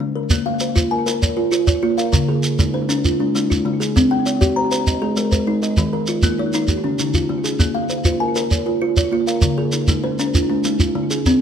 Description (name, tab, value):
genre	southern african traditional, mbira-style interlocking cycle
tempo	132 BPM (dotted quarters)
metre	12/8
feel	straight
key	Bb equiheptatonic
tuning	A4 = 440 Hz
part	kalimba	arpeggios	0.0-11.4 s	Db3+43c to Bb5	-19 LUFS	left 3 dB	tape echo
part	shekere	percussion	0.3-11.4 s	none	-19 LUFS	right 2 dB	none
part	kalimba	arpeggios	0.5-11.4 s	Db3+43c to Eb5	-22 LUFS	right 6 dB	none
room	light reverb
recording	close, detailed microphones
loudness	-16 LUFS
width	side -8 dB against mid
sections	0.3-11.4 A section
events	none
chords	0.3 Bbm; 2.1 Db; 4.0 C5; 4.9 Ab; 5.8 Eb5; 6.7 Db; 7.6 Bbm; 9.4 Db